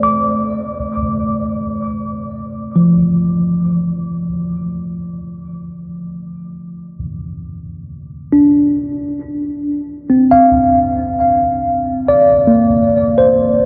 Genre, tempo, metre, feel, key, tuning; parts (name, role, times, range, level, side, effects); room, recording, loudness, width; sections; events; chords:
ambient; 51 BPM; 4/4; straight; F major; A4 = 435 Hz
tine electric piano; solo; 0.0-13.7 s; F3 to D6; -16 LUFS; equal; diffuse ambient delay
wet huge ambient reverb, RT60 8.5 s; worn, warbling old tape, cassette tape, warbly pitch drift; -15 LUFS; mono
0.8-13.7 A section
0.0 F (rootless); 0.8 F; 10.3 Bbadd9